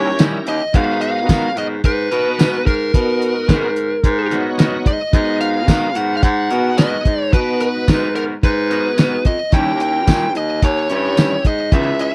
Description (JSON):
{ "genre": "straight-eighth soul blues", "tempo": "109 BPM", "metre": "4/4", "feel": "swing 56% on 16ths", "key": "unclear", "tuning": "A4 = 440 Hz", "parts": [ { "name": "bright tonewheel organ", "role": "accompaniment", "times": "0.0-12.1 s", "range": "B3 to C#5", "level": "-27 LUFS", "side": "equal", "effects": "overdrive, chorus vibrato, slow rotary speaker" }, { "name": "clear horn section", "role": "sustained chords", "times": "0.0-0.6 s", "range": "G3 to G4", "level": "-34 LUFS", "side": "equal", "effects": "none" }, { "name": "electric guitar at the edge of break-up", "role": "stabs", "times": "0.0-11.9 s", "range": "C#3 to A#4", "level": "-28 LUFS", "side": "equal", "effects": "none" }, { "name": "warm baritone saxophone", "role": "bass", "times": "0.0-12.1 s", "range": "C#2 to D#3", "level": "-23 LUFS", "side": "equal", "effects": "none" }, { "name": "cloth-damped thuddy drum kit", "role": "drums", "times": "0.2-12.1 s", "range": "hi-hat, kick drum, snare drum, tambourine", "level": "-17 LUFS", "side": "equal", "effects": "none" }, { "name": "biting lead guitar", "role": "melody", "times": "0.5-12.1 s", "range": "A#4 to G5", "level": "-22 LUFS", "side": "equal", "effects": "overdrive" } ], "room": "small room reverb", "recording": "dry, close 1970s-style studio recording", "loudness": "-17 LUFS", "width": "mono", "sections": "0.7-12.1 A section", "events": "none", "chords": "0.0 D#7b9; 0.7 G#m9; 9.5 D#7b9" }